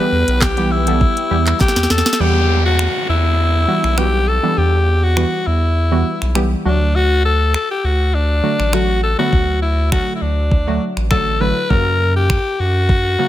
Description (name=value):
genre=dance-pop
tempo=101 BPM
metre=4/4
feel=straight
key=E minor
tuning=A4 = 440 Hz
part: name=raspy alto saxophone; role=melody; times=0.0-13.3 s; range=D4 to B4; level=-18 LUFS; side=left 3 dB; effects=ping-pong delay
part: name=glassy wavetable pluck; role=accompaniment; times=0.0-13.3 s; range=C#3 to F#5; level=-21 LUFS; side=right 2 dB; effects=chorus, sidechain pumping
part: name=lush unison pad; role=sustained chords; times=0.1-2.2 s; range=E3 to G4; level=-26 LUFS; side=right 1 dB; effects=chorus, sidechain pumping
part: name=round analog bass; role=bass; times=0.1-13.2 s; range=A1 to F#2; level=-17 LUFS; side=equal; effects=sidechain pumping
part: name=smooth R&B drum kit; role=drums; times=0.3-13.0 s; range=finger snaps, handclaps, hi-hat, kick drum, snare drum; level=-18 LUFS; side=equal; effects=none
part: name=group handclap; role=percussion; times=0.4-1.8 s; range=none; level=-34 LUFS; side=right 4 dB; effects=none
part: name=downlifter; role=sound effects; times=2.2-7.0 s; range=none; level=-26 LUFS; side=right 1 dB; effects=none
room=little or no reverb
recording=none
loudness=-13 LUFS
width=side -13 dB against mid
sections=0.0-2.2 A section; 2.2-13.3 B section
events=drum fill 1.6-2.2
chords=0.0 Em; 2.2 Emadd9; 6.7 D; 11.7 F#